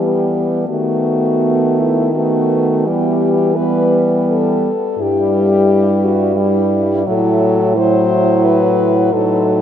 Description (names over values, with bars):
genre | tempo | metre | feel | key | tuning
classical, lyrical piece for horn quartet | 85 BPM | 3/4 | uneven beats, rubato | E minor | A4 = 441 Hz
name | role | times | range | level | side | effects
warm French horn | melody | 0.0-9.6 s | E4 to C5 | -18 LUFS | left 6 dB | none
mellow French horn | second line | 0.0-9.6 s | B3 to E4 | -19 LUFS | right 5 dB | none
clear French horn | accompaniment | 0.0-9.6 s | F#3 to A3 | -18 LUFS | left 2 dB | none
warm French horn | bass | 0.0-9.6 s | G2 to E3 | -18 LUFS | right 2 dB | none
room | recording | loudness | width
wet huge ambient reverb, RT60 8.5 s | in a vast, echoing space | -12 LUFS | side -9 dB against mid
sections
0.0-9.6 A section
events
none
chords
0.0 Em; 0.7 B7/D#; 2.9 Em; 5.0 Em/G; 7.1 F#m7b5/A